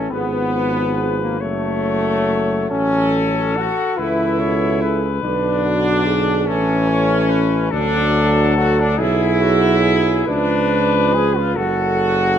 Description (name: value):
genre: classical, hymn-like piece for brass band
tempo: 47 BPM (dotted quarters)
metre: 6/8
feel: rubato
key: unclear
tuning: A4 = 443 Hz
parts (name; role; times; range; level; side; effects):
- warm cornet; melody; 0.0-12.4 s; F#4 to C#5; -24 LUFS; left 7 dB; none
- dark French horn section; second line; 0.0-12.4 s; F#4 to B4; -23 LUFS; right 6 dB; none
- bright trombone section; accompaniment; 0.0-12.4 s; A3 to G#4; -19 LUFS; left 1 dB; none
- clear trombone; accompaniment; 0.0-12.4 s; B2 to F#3; -28 LUFS; right 4 dB; none
- mellow tuba; bass; 0.0-12.4 s; F#1 to D2; -21 LUFS; equal; none
room: moderate scoring stage reverb, RT60 1.9 s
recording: close, detailed microphones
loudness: -15 LUFS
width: side -9 dB against mid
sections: 0.0-12.4 A section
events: none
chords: 0.1 Fdim/Ab; 1.4 F#m; 2.7 A; 5.2 G#dim/B; 6.5 A; 7.7 D; 9.0 Eadd9/B; 10.3 C#7b9; 11.6 F#m